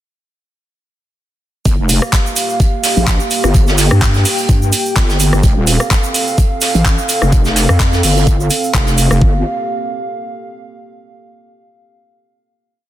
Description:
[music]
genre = bass house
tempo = 127 BPM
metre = 4/4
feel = swing 55% on 16ths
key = G minor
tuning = A4 = 440 Hz
[part]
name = dark analog pad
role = sustained chords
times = 1.7-9.4 s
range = Bb3 to G5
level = -20 LUFS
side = right 1 dB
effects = chorus, sidechain pumping
[part]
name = wobble bass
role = bass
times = 1.7-9.4 s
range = Eb1 to G2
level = -13 LUFS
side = equal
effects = chorus, overdrive, sidechain pumping
[part]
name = electronic kick drum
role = drums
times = 1.7-9.3 s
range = none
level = -13 LUFS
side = equal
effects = studio reverb
[part]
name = vintage brush drum kit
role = drums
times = 1.7-9.1 s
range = hi-hat, snare drum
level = -23 LUFS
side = right 2 dB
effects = sidechain pumping on hats, high-pass filter on hats, studio reverb, high-pass filter on snare, high-pass filter on room
[part]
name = tube shaker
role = percussion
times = 1.7-9.2 s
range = none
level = -24 LUFS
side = right 5 dB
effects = none
[part]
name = garage drum kit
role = drums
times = 1.9-9.2 s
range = handclaps, hi-hat, rim click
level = -18 LUFS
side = equal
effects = studio reverb
[sound]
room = little or no reverb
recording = dense, heavily limited modern master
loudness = -11 LUFS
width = side -13 dB against mid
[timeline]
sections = 1.7-9.2 drop; 9.2-11.1 final chord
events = drop 1.7-9.2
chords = 1.7 Gm7; 5.4 F; 9.2 Gm7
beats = | 1.66 2.13 2.60 3.07 | 3.54 4.02 4.49 4.96 | 5.43 5.91 6.38 6.85 | 7.32 7.80 8.27 8.74 | 9.21

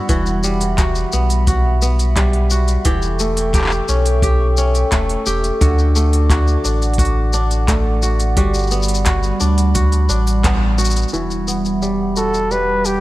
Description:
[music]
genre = folktronica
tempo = 87 BPM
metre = 4/4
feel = straight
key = E dorian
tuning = A4 = 440 Hz
[part]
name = warbly tape-like pad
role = sustained chords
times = 0.0-13.0 s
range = G3 to D6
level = -23 LUFS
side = right 1 dB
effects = chorus, built-in reverb
[part]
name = kora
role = arpeggios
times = 0.0-13.0 s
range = D3 to G4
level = -22 LUFS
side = equal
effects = low-pass filter, digital delay
[part]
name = warm sub bass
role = bass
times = 0.1-13.0 s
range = E1 to D2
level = -17 LUFS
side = equal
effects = none
[part]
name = kick drum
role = drums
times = 0.1-10.6 s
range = none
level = -18 LUFS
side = equal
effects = small room ambience
[part]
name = organic electronic drum kit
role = drums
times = 0.1-13.0 s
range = handclaps, hi-hat, shaker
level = -24 LUFS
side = left 2 dB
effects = small room ambience
[part]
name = warm flugelhorn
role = melody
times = 12.2-13.0 s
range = G4 to B4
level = -17 LUFS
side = equal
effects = none
[sound]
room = light reverb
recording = none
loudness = -14 LUFS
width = side -17 dB against mid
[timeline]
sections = 0.0-11.1 A section; 11.1-13.0 B section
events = band accent 10.4-10.8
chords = 0.1 Emadd9; 2.9 A7/E; 5.6 D; 8.4 Gmaj7; 11.1 Emadd9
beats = | 0.10 0.79 1.48 2.17 | 2.85 3.54 4.23 4.92 | 5.61 6.30 6.99 7.68 | 8.37 9.06 9.75 10.44 | 11.13 11.82 12.51

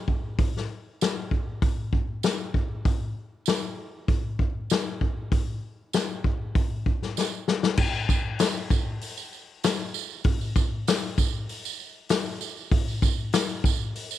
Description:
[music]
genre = rock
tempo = 97 BPM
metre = 4/4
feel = straight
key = none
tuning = none
[part]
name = vintage drum kit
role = drums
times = 0.1-14.1 s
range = crash cymbal, hi-hat, kick drum, snare drum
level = -24 LUFS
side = left 1 dB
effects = none
[part]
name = tambourine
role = percussion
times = 1.0-14.2 s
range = none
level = -34 LUFS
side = right 20 dB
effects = none
[sound]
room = light reverb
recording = 1960s-style stereo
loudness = -24 LUFS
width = side -13 dB against mid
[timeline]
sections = 0.0-7.8 A section; 7.8-14.2 B section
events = drum fill 7.2-7.8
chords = none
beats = | 0.39 1.00 1.62 2.23 | 2.85 3.47 4.09 4.70 | 5.32 5.94 6.55 7.17 | 7.79 8.40 9.02 9.64 | 10.26 10.87 11.49 12.11 | 12.72 13.34 13.96

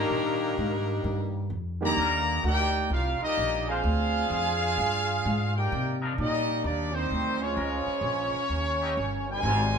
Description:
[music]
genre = jazz, big band swing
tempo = 129 BPM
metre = 4/4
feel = swing 66% on 8ths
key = Eb major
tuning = A4 = 440 Hz
[part]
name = warm saxophone section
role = melody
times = 0.0-1.5 s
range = G3 to Bb4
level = -29 LUFS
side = left 3 dB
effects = none
[part]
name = bright trombone section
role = second line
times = 0.0-9.8 s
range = C3 to Ab4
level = -32 LUFS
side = right 2 dB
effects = none
[part]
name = upright bass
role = bass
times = 0.0-9.8 s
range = G1 to C3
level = -30 LUFS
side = equal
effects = none
[part]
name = clear trumpet section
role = melody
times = 1.8-9.8 s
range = Bb3 to Bb5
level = -28 LUFS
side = equal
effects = none
[part]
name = warm concert grand piano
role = accompaniment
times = 1.8-2.0 s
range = Eb3 to G4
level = -31 LUFS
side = right 2 dB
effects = none
[part]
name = muted trombone section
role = sustained chords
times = 2.0-9.8 s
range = Fb3 to C5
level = -36 LUFS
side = left 2 dB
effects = none
[sound]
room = moderate large studio reverb, RT60 1.1 s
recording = band playing live in one room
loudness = -25 LUFS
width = side -6 dB against mid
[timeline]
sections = 0.0-2.0 A section; 2.0-9.8 B section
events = none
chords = 0.0 Ebmaj7; 3.8 Dm7b5; 4.8 G5; 5.7 Cm9; 7.6 Bbm7; 8.5 Eb7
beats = | 0.10 0.57 1.04 1.51 | 1.98 2.44 2.91 3.38 | 3.84 4.31 4.78 5.24 | 5.71 6.18 6.64 7.11 | 7.58 8.04 8.51 8.98 | 9.44

